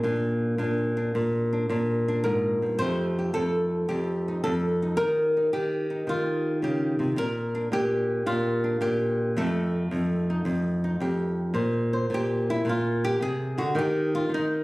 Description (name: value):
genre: solo jazz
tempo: 110 BPM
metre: 4/4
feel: swing 68% on 8ths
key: Bb major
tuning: A4 = 441 Hz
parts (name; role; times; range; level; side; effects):
- flamenco guitar; solo; 0.0-14.6 s; F2 to C5; -24 LUFS; equal; none
room: light reverb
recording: recorded on a phone in the room, studio reverb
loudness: -24 LUFS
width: side -20 dB against mid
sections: 0.0-11.6 A section; 11.6-14.6 B section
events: nylon-string guitar solo 11.6-14.6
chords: 0.0 Bb7; 2.8 F9; 5.0 Eb9; 7.2 Bb; 9.4 F9; 11.6 Bbsus2; 13.7 Cm (rootless)